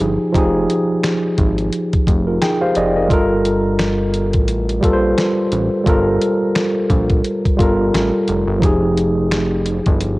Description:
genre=lo-fi hip hop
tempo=87 BPM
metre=4/4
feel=swing 56% on 16ths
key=unclear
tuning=A4 = 440 Hz
part: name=tine electric piano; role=accompaniment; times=0.0-10.2 s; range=F3 to G5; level=-16 LUFS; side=equal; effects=medium stereo tremolo, cassette tape
part: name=fat analog bass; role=bass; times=0.0-10.2 s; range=F1 to Bb1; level=-20 LUFS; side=equal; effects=none
part: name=lo-fi sampler-style drum kit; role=drums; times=0.0-10.2 s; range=finger snaps, hi-hat, kick drum, snare drum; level=-18 LUFS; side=equal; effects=none
room=light reverb, digital ambience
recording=home recording on cassette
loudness=-14 LUFS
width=side -20 dB against mid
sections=0.0-10.2 A section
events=tine electric piano fill 2.1-3.1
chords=0.0 Fm9; 3.1 Gm9; 8.6 Fm9

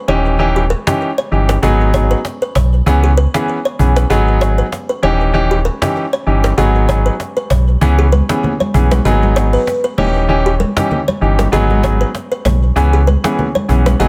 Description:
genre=afrobeats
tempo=97 BPM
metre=4/4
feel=swing 55% on 16ths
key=G# minor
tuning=A4 = 439 Hz
part: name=buzzing kalimba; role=riff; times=0.0-14.1 s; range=G4 to C#5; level=-22 LUFS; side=equal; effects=digital delay
part: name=clear baby grand piano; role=accompaniment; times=0.1-14.1 s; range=E3 to G#4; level=-18 LUFS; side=equal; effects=none
part: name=sub bass with octave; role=bass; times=0.1-14.1 s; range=D#1 to C#2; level=-16 LUFS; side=equal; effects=none
part: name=cajon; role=drums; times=0.1-14.1 s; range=none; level=-23 LUFS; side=equal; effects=none
part: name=congas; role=percussion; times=8.1-14.1 s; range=none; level=-24 LUFS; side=equal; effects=none
room=small room reverb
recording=none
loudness=-14 LUFS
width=mono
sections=0.0-14.1 A section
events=none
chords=0.1 D#7b9; 1.6 G#m7; 2.9 C#m7; 4.1 G#m7; 5.0 D#7b9; 6.6 G#m7; 7.8 C#m7; 9.1 G#m7; 10.0 D#7b9; 11.5 G#m7; 12.8 C#m7

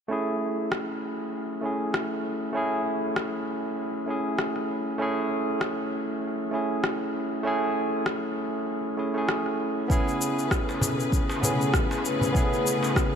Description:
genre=organic downtempo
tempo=98 BPM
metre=4/4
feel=swing 57% on 16ths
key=unclear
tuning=A4 = 440 Hz
part: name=barky tine electric piano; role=accompaniment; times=0.1-13.2 s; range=A3 to G#4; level=-27 LUFS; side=right 1 dB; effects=overdrive, sidechain pumping, low-pass filter, diffuse ambient delay
part: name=electronic rim click and shaker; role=drums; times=0.7-13.1 s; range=none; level=-33 LUFS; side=left 2 dB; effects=none
part: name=rich symphonic string section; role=sustained chords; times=9.9-13.2 s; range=C#3 to B4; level=-29 LUFS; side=left 2 dB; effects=sidechain pumping
part: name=electronic kick drum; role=drums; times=9.9-13.1 s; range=none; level=-25 LUFS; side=equal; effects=none
part: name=darbuka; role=percussion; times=10.1-12.9 s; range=none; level=-32 LUFS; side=equal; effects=none
room=wet cathedral reverb, RT60 6.8 s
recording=dreamy mix soaked in reverb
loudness=-25 LUFS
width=side -7 dB against mid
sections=0.1-13.2 A section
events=filter sweep on tine electric piano 0.1-13.2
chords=0.1 Amaj7; 9.9 Amaj9

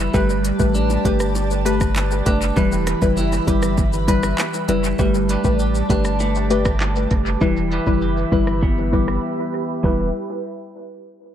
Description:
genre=dancehall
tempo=99 BPM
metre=4/4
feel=straight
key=E minor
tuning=A4 = 440 Hz
part: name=soft round pluck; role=accompaniment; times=0.0-10.1 s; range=G3 to B4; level=-22 LUFS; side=left 3 dB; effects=chorus, dub echo
part: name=airy breathy pad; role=sustained chords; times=0.0-10.1 s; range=G4 to B5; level=-28 LUFS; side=right 2 dB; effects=chorus, phaser, sidechain pumping
part: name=clean electric guitar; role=arpeggios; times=0.0-10.1 s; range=E3 to B4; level=-24 LUFS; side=right 2 dB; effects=none
part: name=punchy sub bass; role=bass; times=0.0-10.1 s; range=E1 to A1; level=-22 LUFS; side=equal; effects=none
part: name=afro-pop drum kit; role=drums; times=0.1-10.0 s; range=crash cymbal, handclaps, hi-hat, kick drum, rim click, shaker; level=-22 LUFS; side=equal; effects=dub echo
part: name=bongos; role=percussion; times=0.1-10.1 s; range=none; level=-36 LUFS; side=right 4 dB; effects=none
room=light reverb, digital ambience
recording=echo-heavy mix, low-pass filter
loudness=-17 LUFS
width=side -10 dB against mid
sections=0.0-5.0 A section; 5.0-9.8 B section; 9.8-11.3 C section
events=filter sweep 5.0-9.8; break 9.2-9.8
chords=0.1 Gadd9; 2.6 Em; 5.0 Gadd9; 7.4 Em

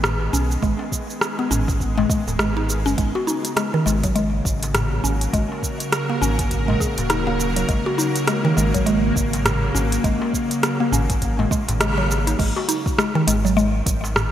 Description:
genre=organic downtempo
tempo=102 BPM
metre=4/4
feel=swing 59% on 16ths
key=unclear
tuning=A4 = 444 Hz
part: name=bowed-like drone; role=sustained chords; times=0.0-14.3 s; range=C#3 to B4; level=-26 LUFS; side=equal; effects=built-in reverb, sidechain pumping
part: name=round analog bass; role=bass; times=0.0-14.3 s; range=D#1 to B1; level=-23 LUFS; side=equal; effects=sidechain pumping
part: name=organic electronic drum kit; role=drums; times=0.0-14.3 s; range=crash cymbal, hi-hat, rim click, shaker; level=-24 LUFS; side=right 1 dB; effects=gated reverb
part: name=darbuka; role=percussion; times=0.0-14.3 s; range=none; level=-31 LUFS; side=left 1 dB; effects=none
part: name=mallet-like synth pluck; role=arpeggios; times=0.3-13.7 s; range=D#3 to G#4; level=-23 LUFS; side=equal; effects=chorus, phaser, digital delay
part: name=electronic kick drum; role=drums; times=0.6-14.0 s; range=none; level=-25 LUFS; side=equal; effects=none
room=moderate lush hall reverb, RT60 2.5 s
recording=bright 1980s-style digital production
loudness=-18 LUFS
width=side -11 dB against mid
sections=0.0-12.4 A section; 12.4-14.3 B section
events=band accent 11.8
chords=0.0 G#m; 3.0 F#; 12.4 G#m

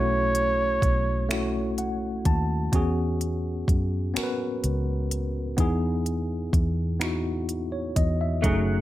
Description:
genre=slow six-eight R&B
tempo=42 BPM (dotted quarters)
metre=6/8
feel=straight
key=unclear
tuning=A4 = 440 Hz
part: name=breathy flugelhorn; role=melody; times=0.0-1.8 s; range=C#5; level=-26 LUFS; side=right 2 dB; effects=tape echo
part: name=tine electric piano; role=accompaniment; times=0.0-8.8 s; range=A3 to A5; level=-28 LUFS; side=left 1 dB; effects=overdrive, fast stereo tremolo
part: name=vintage muted fingered electric bass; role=bass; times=0.0-8.8 s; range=F#1 to F#2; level=-27 LUFS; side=equal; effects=none
part: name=smooth R&B drum kit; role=drums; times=0.3-8.7 s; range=finger snaps, hi-hat, kick drum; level=-26 LUFS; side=equal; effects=none
part: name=clean electric guitar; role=second line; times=8.4-8.8 s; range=F#3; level=-28 LUFS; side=right 1 dB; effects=ensemble chorus
room=light reverb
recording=none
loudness=-23 LUFS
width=side -14 dB against mid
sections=0.0-8.8 A section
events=tine electric piano fill 1.3-2.7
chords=0.0 B9sus4; 2.7 E69; 5.6 Emaj13

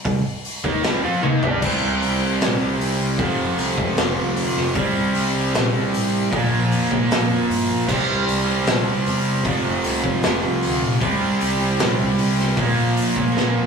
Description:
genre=hard rock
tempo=153 BPM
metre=4/4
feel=straight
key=unclear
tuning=A4 = 444 Hz
part: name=cranked stack guitar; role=riff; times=0.1-13.7 s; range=F2 to G4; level=-21 LUFS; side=right 3 dB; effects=overdrive
part: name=heavy high-gain guitar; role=riff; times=0.1-13.7 s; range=F2 to G4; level=-30 LUFS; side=left 2 dB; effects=distortion
part: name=tight distorted guitar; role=riff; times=0.1-13.7 s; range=F2 to G4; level=-28 LUFS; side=left 4 dB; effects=distortion
part: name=upright bass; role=bass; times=0.1-13.7 s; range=F1 to G2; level=-27 LUFS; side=left 2 dB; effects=none
part: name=big rock drum kit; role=drums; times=0.1-13.5 s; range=crash cymbal, hi-hat, kick drum, snare drum, toms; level=-23 LUFS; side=left 1 dB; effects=none
room=moderate stone room reverb, RT60 1.2 s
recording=rough rehearsal-room recording, small room ambience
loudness=-18 LUFS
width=side -6 dB against mid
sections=0.0-1.6 A section; 1.6-13.7 B section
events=drum fill 1.2-1.6, 13.4-13.7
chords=0.0 C5; 3.2 F5; 4.8 C5; 6.3 Bb5; 7.9 C; 9.5 F5; 11.0 C5; 12.6 Bb5

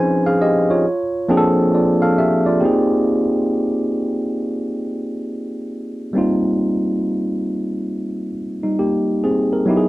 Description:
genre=R&B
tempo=68 BPM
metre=4/4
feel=swing 64% on 16ths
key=Ab major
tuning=A4 = 440 Hz
part: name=tine electric piano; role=solo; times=0.0-9.9 s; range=F3 to Ab5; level=-16 LUFS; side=equal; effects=none
room=little or no reverb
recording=dry, close 1970s-style studio recording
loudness=-16 LUFS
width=side -18 dB against mid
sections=0.0-2.6 A section; 2.6-9.9 B section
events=none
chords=0.0 Dbmaj9; 0.8 Bbmaj9; 2.6 Abmaj9

